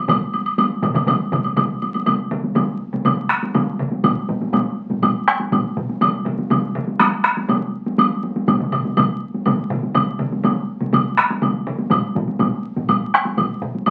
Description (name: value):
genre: japanese traditional, taiko drum ensemble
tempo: 122 BPM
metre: 4/4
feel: straight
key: none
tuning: none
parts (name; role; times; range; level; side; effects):
- solo taiko drums; percussion; 0.1-13.9 s; none; -23 LUFS; equal; none
- taiko ensemble; percussion; 0.1-13.9 s; none; -25 LUFS; equal; none
- taiko ensemble; percussion; 0.1-13.7 s; none; -25 LUFS; equal; none
- taiko ensemble; percussion; 0.1-1.2, 9.9-13.9 s; none; -31 LUFS; equal; none
- woodblock; percussion; 0.1-13.9 s; none; -24 LUFS; equal; none
room: wet club reverb, RT60 0.6 s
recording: very old 78 rpm record, vinyl crackle, nothing above 10.8 kHz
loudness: -20 LUFS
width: mono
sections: 0.0-2.1 A section; 2.1-13.9 B section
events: none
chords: none